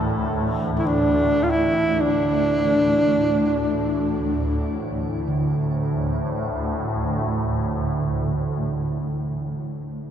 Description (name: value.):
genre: world meditative, free-time meditation music.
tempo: free time.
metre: none.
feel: none.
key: unclear.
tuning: A4 = 438 Hz.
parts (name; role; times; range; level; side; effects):
swarming drone; drone; 0.0-9.5 s; D2 to A2; -24 LUFS; equal; built-in reverb, phaser.
quartz singing bowl; texture; 0.0-9.5 s; D3 to E3; -28 LUFS; right 2 dB; none.
breathy alto saxophone; melody; 0.8-4.8 s; D4 to F4; -21 LUFS; equal; shimmer reverb, diffuse ambient delay.
room: wet huge ambient reverb, RT60 5.2 s.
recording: none.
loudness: -20 LUFS.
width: side -9 dB against mid.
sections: 0.0-5.3 A section; 5.3-8.9 B section.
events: none.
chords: none.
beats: free time.